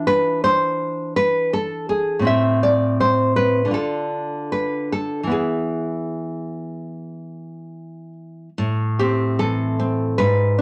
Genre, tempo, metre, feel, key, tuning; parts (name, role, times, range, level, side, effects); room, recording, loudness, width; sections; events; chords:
romantic piece for solo classical guitar; 72-83 BPM; 4/4; rubato; A minor; A4 = 440 Hz
nylon-string guitar; solo; 0.0-10.6 s; G#2 to E5; -21 LUFS; equal
moderate studio reverb, RT60 0.7 s; -21 LUFS; mono
0.0-8.6 A section; 8.6-10.6 B section
0.0 E7b9b13; 2.3 Am; 3.7 Dm; 5.3 E; 8.6 Am